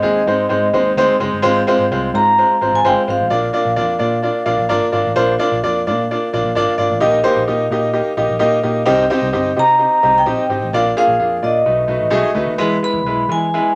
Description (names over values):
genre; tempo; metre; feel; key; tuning
uptempo 1960s-style soul; 129 BPM; 4/4; straight; unclear; A4 = 439 Hz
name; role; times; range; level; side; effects
vibraphone with medium hard mallets; melody; 0.0-4.4, 9.6-13.7 s; Eb5 to B5; -18 LUFS; equal; none
bright upright piano; accompaniment; 0.0-13.7 s; Ab3 to Bb5; -18 LUFS; equal; none
vintage muted picked electric bass; bass; 0.0-13.6 s; Gb1 to E3; -28 LUFS; equal; none
room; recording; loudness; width
wet club reverb, RT60 0.5 s; none; -16 LUFS; mono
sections
0.0-12.6 A section; 12.6-13.8 B section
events
upright piano fill 4.2-5.2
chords
0.0 Ab; 1.4 Fm/Ab; 3.3 Bb; 7.0 Eb/Bb; 8.9 Cm; 10.7 Bb; 11.7 B7; 12.6 E